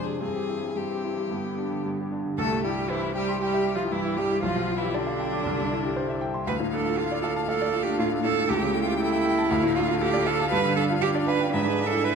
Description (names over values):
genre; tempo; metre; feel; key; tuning
quick classical-period movement for piano quartet; 118 BPM; 4/4; rubato; C major; A4 = 441 Hz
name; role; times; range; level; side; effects
rich violin; melody; 0.0-12.2 s; D4 to G5; -32 LUFS; left 7 dB; none
rich cello; second line; 0.0-12.2 s; D3 to B4; -28 LUFS; right 5 dB; none
bright grand piano; accompaniment; 0.0-12.2 s; B1 to D6; -27 LUFS; left 1 dB; none
warm viola; accompaniment; 0.0-12.2 s; D3 to D4; -32 LUFS; right 4 dB; none
room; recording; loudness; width
wet scoring stage reverb, RT60 2.0 s; none; -23 LUFS; side -6 dB against mid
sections
0.0-2.4 A section; 2.4-12.2 B section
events
none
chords
0.2 C/G; 1.3 G; 2.4 C; 4.4 G7/B; 5.5 C; 6.5 Dm; 8.5 A7/C#; 9.5 Dm; 10.5 G5; 11.5 E7/G#